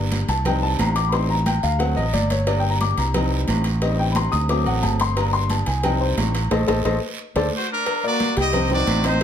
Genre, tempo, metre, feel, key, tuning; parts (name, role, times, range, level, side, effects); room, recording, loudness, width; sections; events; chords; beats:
latin, salsa; 178 BPM; 4/4; straight; G harmonic minor; A4 = 441 Hz
clear baby grand piano; accompaniment; 0.0-9.2 s; F#3 to Eb6; -23 LUFS; left 3 dB
fingered electric bass; bass; 0.0-9.2 s; G1 to D2; -22 LUFS; right 1 dB
agogo bells and timbales; percussion; 0.1-9.2 s; -31 LUFS; right 6 dB
congas; percussion; 0.1-9.2 s; -29 LUFS; equal
cowbell; percussion; 0.1-9.2 s; -30 LUFS; left 4 dB
guiro; percussion; 0.1-9.2 s; -35 LUFS; right 6 dB
bright trumpet section; melody; 7.6-9.2 s; D4 to Eb5; -22 LUFS; equal
light reverb; -18 LUFS; side -9 dB against mid
0.0-7.9 A section; 7.9-9.2 B section
grand piano solo 0.0-7.9; band accent 6.5-7.9; drum fill 7.0-7.9
0.5 Cm; 1.1 Am7b5; 1.8 D7; 2.5 Gm; 3.1 Cm; 3.8 Am7b5; 4.5 D7; 5.2 Gm; 5.8 Cm; 6.5 Adim; 7.2 D7; 7.9 Gm; 8.5 Cm
0.12 0.45 0.79 | 1.13 1.46 1.80 2.14 | 2.47 2.81 3.15 3.48 | 3.82 4.16 4.49 4.83 | 5.17 5.50 5.84 6.18 | 6.51 6.85 7.19 7.53 | 7.86 8.20 8.54 8.87 | 9.21